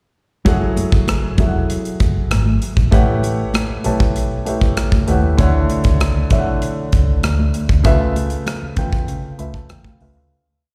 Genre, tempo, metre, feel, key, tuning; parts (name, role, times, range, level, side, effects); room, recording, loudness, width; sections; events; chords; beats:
lush 1970s-style soul; 98 BPM; 4/4; straight; F# minor; A4 = 440 Hz
dark concert grand piano; accompaniment; 0.4-10.3 s; C#3 to B5; -23 LUFS; equal; slapback echo
vintage muted fingered electric bass; bass; 0.5-10.3 s; E1 to C#3; -21 LUFS; equal
modern studio drum kit; drums; 0.5-10.1 s; hi-hat, kick drum, rim click; -20 LUFS; equal
congas; percussion; 0.5-10.0 s; -29 LUFS; equal; slapback echo
little or no reverb; live gig heard through the venue's PA, recital hall reverb; -17 LUFS; mono
0.5-10.3 verse
fade-out 7.8-10.3; grand piano fill 9.1-10.3
0.5 F#m7; 2.9 A13; 5.4 Dmaj7; 7.8 C#7alt
| 0.46 1.08 1.70 2.31 | 2.93 3.54 4.16 4.77 | 5.39 6.00 6.62 7.24 | 7.85 8.46 9.08 9.70